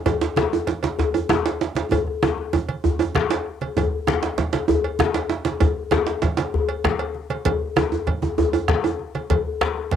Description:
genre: west african traditional, West African drum ensemble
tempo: 130 BPM (dotted quarters)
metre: 12/8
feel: straight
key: none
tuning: none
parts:
  - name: bombo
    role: percussion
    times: 0.1-10.0 s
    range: none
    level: -24 LUFS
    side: right 2 dB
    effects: none
  - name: congas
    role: percussion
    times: 0.1-10.0 s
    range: none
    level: -29 LUFS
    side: right 4 dB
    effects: none
  - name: cowbell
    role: percussion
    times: 0.1-10.0 s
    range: none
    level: -31 LUFS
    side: right 8 dB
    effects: none
  - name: djembe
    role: percussion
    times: 0.1-9.8 s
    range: none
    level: -23 LUFS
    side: left 6 dB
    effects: none
  - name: djembe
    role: percussion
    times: 0.1-9.0 s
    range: none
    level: -23 LUFS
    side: right 7 dB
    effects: none
room: moderate booth ambience, RT60 0.2 s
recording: home recording on cassette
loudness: -20 LUFS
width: side -9 dB against mid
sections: 0.0-3.8 A section; 3.8-10.0 B section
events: drum fill 1.9-3.8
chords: none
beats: | 0.06 0.53 0.99 1.45 | 1.92 2.38 2.84 3.30 | 3.77 4.23 4.69 5.15 | 5.61 6.07 6.54 7.00 | 7.46 7.92 8.38 8.84 | 9.30 9.76

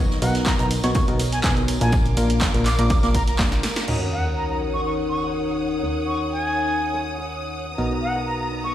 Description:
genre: piano house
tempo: 123 BPM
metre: 4/4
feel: swing 53% on 16ths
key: Eb minor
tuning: A4 = 440 Hz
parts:
  - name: warm symphonic violin section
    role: sustained chords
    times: 0.0-8.7 s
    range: B3 to Eb6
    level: -32 LUFS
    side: right 1 dB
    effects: sidechain pumping
  - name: barking FM electric piano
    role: riff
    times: 0.0-8.7 s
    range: A#2 to D5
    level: -27 LUFS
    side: left 1 dB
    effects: chorus, sidechain pumping
  - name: plucky analog bass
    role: bass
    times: 0.0-8.7 s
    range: A#1 to Eb2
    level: -26 LUFS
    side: equal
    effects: sidechain pumping
  - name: warbly tape-like pad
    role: texture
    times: 0.7-8.7 s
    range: B3 to Bb5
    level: -30 LUFS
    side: left 2 dB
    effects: chorus, built-in reverb, sidechain pumping
  - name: swinging big-band drum kit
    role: drums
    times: 0.1-8.7 s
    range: hi-hat, snare drum, tambourine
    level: -36 LUFS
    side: right 1 dB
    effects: high-pass filter on hats, low-pass filter on hats, high-pass filter on snare, low-pass filter on snare, high-pass filter on perc, low-pass filter on perc, high-pass filter on room, low-pass filter on room
  - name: bright concert flute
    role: melody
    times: 0.2-8.7 s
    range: F#5 to D6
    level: -28 LUFS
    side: equal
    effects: digital delay
  - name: punchy analog drum machine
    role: drums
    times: 0.2-4.0 s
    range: crash cymbal, handclaps, hi-hat, snare drum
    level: -28 LUFS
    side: equal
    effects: overdrive
  - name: electronic kick drum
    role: drums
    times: 0.5-3.5 s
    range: none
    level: -22 LUFS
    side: equal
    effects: overdrive
  - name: sub drop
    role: sound effects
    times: 3.9-5.8 s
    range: none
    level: -29 LUFS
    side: equal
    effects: none
room: light reverb, studio reverb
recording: played on a big sound system in a bare room, stone room reverb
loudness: -19 LUFS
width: side -12 dB against mid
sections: 0.0-3.9 A section; 3.9-8.7 B section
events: drum fill 3.4-3.9; band accent 3.8; impact 3.9-5.8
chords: 0.0 Bmaj7; 1.9 Bb; 3.9 Ebm7; 7.8 Bmaj7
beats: 0.46 0.95 1.44 | 1.93 2.42 2.90 3.39 | 3.88 4.37 4.85 5.34 | 5.83 6.32 6.80 7.29 | 7.78 8.27

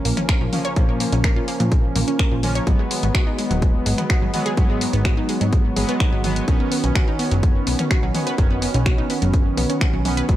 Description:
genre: melodic techno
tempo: 126 BPM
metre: 4/4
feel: straight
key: unclear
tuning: A4 = 441 Hz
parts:
  - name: warm analog pad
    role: sustained chords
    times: 0.0-10.4 s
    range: C#3 to C#5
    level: -32 LUFS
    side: equal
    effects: chorus, sidechain pumping
  - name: analog synth brass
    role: stabs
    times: 0.0-10.4 s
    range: D#3 to C#4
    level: -25 LUFS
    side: right 1 dB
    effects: chorus, sidechain pumping, tape echo
  - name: impact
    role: sound effects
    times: 0.2-0.8 s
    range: none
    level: -43 LUFS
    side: equal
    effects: none
  - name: wide unison pluck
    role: arpeggios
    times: 0.1-10.3 s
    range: E#3 to C#5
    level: -27 LUFS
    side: equal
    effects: sidechain pumping, tape echo
  - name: plucky analog bass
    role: bass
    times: 0.1-10.4 s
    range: D#1 to A#2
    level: -23 LUFS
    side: equal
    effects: sidechain pumping
  - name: house drum kit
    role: drums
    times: 0.1-10.4 s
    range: finger snaps, hi-hat, toms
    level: -26 LUFS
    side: left 1 dB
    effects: sidechain pumping on hats, studio reverb, sidechain pumping on cymbals, sidechain pumping on toms
  - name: electronic kick drum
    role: drums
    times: 0.3-10.4 s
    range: none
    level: -18 LUFS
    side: equal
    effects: studio reverb
room: little or no reverb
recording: dry, gritty hardware recording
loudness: -17 LUFS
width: side -13 dB against mid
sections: 0.0-10.4 A section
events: impact 0.0-0.8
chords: 0.0 A#m; 2.7 G#m7; 6.5 Badd9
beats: 0.29 | 0.77 1.24 1.72 2.19 | 2.67 3.15 3.62 4.10 | 4.57 5.05 5.53 6.00 | 6.48 6.96 7.43 7.91 | 8.38 8.86 9.34 9.81 | 10.29

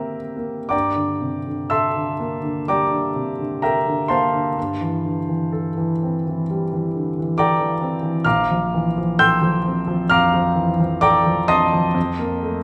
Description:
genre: classical, impressionist solo piano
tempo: 64 BPM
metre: 4/4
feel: uneven beats, rubato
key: unclear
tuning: A4 = 440 Hz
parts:
  - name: clear concert grand piano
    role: solo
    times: 0.0-12.6 s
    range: Bb1 to G6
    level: -20 LUFS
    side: equal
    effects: none
room: wet recital hall reverb, RT60 1.6 s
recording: recorded in a church or concert hall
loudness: -20 LUFS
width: mono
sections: 0.7-12.6 A section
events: none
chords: 0.0 Gmadd11; 0.7 C69/G; 8.2 Bbmaj9; 12.0 F7sus4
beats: | 0.73 1.73 2.71 3.65 | 4.57 5.52 6.49 7.37 | 8.25 9.19 10.11 11.02 | 11.96

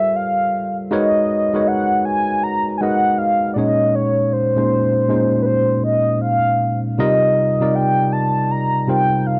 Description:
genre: R&B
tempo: 79 BPM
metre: 4/4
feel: swing 63% on 16ths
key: unclear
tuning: A4 = 440 Hz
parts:
  - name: mellow horn-like synth lead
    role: melody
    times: 0.0-9.4 s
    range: B4 to Bb5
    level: -20 LUFS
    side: equal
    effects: chorus
  - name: tine electric piano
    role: accompaniment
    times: 0.0-9.4 s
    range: Bb2 to Eb5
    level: -21 LUFS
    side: equal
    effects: none
room: light reverb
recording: dry, close 1970s-style studio recording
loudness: -18 LUFS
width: mono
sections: 0.0-9.4 A section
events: none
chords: 0.0 Gm11; 0.9 Abm11; 3.6 Bbm11; 7.0 Cm11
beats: 0.14 | 0.90 1.66 2.42 3.18 | 3.94 4.70 5.46 6.22 | 6.98 7.74 8.50 9.26

